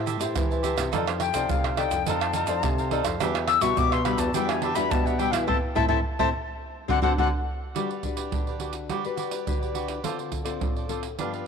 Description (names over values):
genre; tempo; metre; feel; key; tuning
samba and choro; 105 BPM; 4/4; straight; G major; A4 = 440 Hz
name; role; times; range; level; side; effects
cavaquinho; accompaniment; 0.0-11.5 s; D4 to A5; -32 LUFS; right 12 dB; none
nylon-string guitar; accompaniment; 0.0-11.5 s; G2 to D5; -31 LUFS; left 11 dB; none
nylon-string guitar; bass; 0.0-7.3 s; E2 to E3; -30 LUFS; equal; none
egg shaker, pandeiro, surdo and tamborim; percussion; 0.1-11.5 s; none; -28 LUFS; right 3 dB; none
breathy reedy jazz flute; second line; 1.2-7.3 s; F5 to E6; -27 LUFS; left 10 dB; none
room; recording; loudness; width
moderate plate reverb, RT60 3.6 s; 1960s-style stereo with parts hard left and right; -23 LUFS; side -6 dB against mid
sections
0.0-7.8 A section; 7.8-11.5 B section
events
flute solo 0.0-7.8; band accent 5.5-7.8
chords
0.0 Am7; 0.9 F6; 3.2 Em9; 5.5 Am; 6.6 D7; 7.8 Gmaj7; 10.0 Dm7